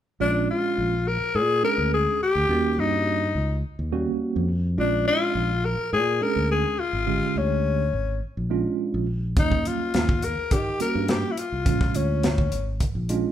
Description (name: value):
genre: straight-eighth soul blues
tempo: 105 BPM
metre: 4/4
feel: straight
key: unclear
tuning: A4 = 441 Hz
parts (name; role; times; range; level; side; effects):
- growling tenor saxophone; melody; 0.2-12.8 s; C#4 to Bb4; -24 LUFS; left 4 dB; none
- tine electric piano; accompaniment; 0.2-13.3 s; D3 to Ab4; -28 LUFS; right 6 dB; medium stereo tremolo
- fingered electric bass; bass; 0.2-13.2 s; Ab1 to Eb3; -27 LUFS; equal; none
- tight funk drum kit; drums; 9.4-13.2 s; hi-hat, kick drum, snare drum; -24 LUFS; equal; none
room: moderate large studio reverb, RT60 1.1 s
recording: band playing live in one room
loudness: -21 LUFS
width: side -10 dB against mid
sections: 0.2-13.3 A section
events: none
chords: 0.2 Bb7#9; 2.5 Eb7#9; 4.8 Bb7#9; 9.4 Eb7#9; 11.7 Bb7#9